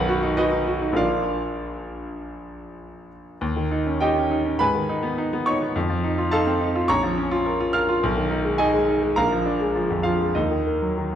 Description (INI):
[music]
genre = classical, virtuoso piano study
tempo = 97-107 BPM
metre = 4/4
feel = rubato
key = unclear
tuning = A4 = 440 Hz
[part]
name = clear grand piano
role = solo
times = 0.0-11.2 s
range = Bb1 to F6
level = -21 LUFS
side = equal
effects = none
[sound]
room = wet recital hall reverb, RT60 1.4 s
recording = dark, warm production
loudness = -20 LUFS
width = side -9 dB against mid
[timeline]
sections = 0.0-11.2 A section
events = none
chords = 0.0 B; 1.0 Bb; 3.4 Eb7; 4.6 Abm; 5.8 F7; 6.9 Bbm; 8.0 Abm/Cb; 9.2 Bb7; 10.3 Ebm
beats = 0.38 | 0.98 1.59 2.20 2.81 | 3.41 4.01 4.60 5.17 | 5.75 6.32 6.89 7.46 | 8.03 8.59 9.16 9.74 | 10.35 10.97